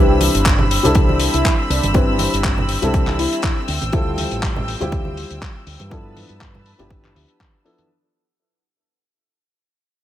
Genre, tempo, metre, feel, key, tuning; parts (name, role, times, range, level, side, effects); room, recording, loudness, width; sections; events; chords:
nu-disco, nu disco; 121 BPM; 4/4; swing 55% on 16ths; C major; A4 = 442 Hz
wide unison lead; melody; 0.0-3.6 s; C4 to G4; -24 LUFS; equal; analog chorus, tape echo
dark baby grand piano; accompaniment; 0.0-7.9 s; F3 to B4; -22 LUFS; left 2 dB; low-pass filter, tape echo
clear studio string section; sustained chords; 0.0-7.9 s; C4 to E6; -26 LUFS; right 1 dB; sidechain pumping
fingered electric bass with an envelope filter; bass; 0.0-7.2 s; G1 to G2; -22 LUFS; equal
damped 70s drum kit; drums; 0.2-7.9 s; handclaps, hi-hat; -23 LUFS; left 3 dB; low-pass filter on hats, studio reverb, low-pass filter on perc, low-pass filter on snare, low-pass filter on room
congas; percussion; 0.2-7.9 s; -28 LUFS; right 3 dB
electronic kick drum; drums; 0.5-7.5 s; -18 LUFS; equal; overdrive, studio reverb
light reverb, studio reverb; -15 LUFS; side -12 dB against mid
0.0-7.9 A section
fade-out 0.0-7.9
0.0 Cmaj7; 3.7 Dm11; 5.9 G13